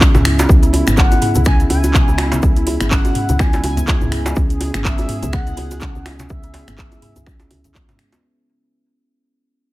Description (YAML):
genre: afro house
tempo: 124 BPM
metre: 4/4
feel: swing 57% on 16ths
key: C# minor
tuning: A4 = 440 Hz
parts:
  - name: warm analog pad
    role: sustained chords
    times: 0.0-8.2 s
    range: C#3 to E5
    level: -28 LUFS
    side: right 2 dB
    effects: chorus, sidechain pumping
  - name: kalimba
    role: arpeggios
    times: 0.0-8.2 s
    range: G#3 to G#4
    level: -22 LUFS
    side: equal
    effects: sidechain pumping
  - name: woody FM bass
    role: bass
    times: 0.0-8.0 s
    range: G#1 to C#2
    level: -20 LUFS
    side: equal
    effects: sidechain pumping
  - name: afro-pop drum kit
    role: drums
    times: 0.0-8.2 s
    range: finger snaps, handclaps, hi-hat, toms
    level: -22 LUFS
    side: equal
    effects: none
  - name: electronic kick drum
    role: drums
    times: 0.0-7.9 s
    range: none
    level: -14 LUFS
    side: equal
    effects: overdrive
  - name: djembe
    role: percussion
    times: 0.0-8.2 s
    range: none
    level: -24 LUFS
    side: right 1 dB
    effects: none
  - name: tube shaker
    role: percussion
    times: 0.0-8.2 s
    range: none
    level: -33 LUFS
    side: left 4 dB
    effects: none
  - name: congas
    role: percussion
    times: 0.1-8.0 s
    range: none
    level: -26 LUFS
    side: left 2 dB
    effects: none
  - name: expressive synth lead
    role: melody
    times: 1.0-7.7 s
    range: E5 to G#5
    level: -26 LUFS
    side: left 2 dB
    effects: analog chorus, dub echo
room: small room ambience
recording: none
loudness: -13 LUFS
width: side -18 dB against mid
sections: 0.0-8.2 A section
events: drop 0.0-8.2; fade-out 0.5-8.2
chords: 0.0 C#m7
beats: 0.01 | 0.49 0.98 1.46 1.94 | 2.43 2.91 3.40 3.88 | 4.36 4.85 5.33 5.82 | 6.30 6.78 7.27 7.75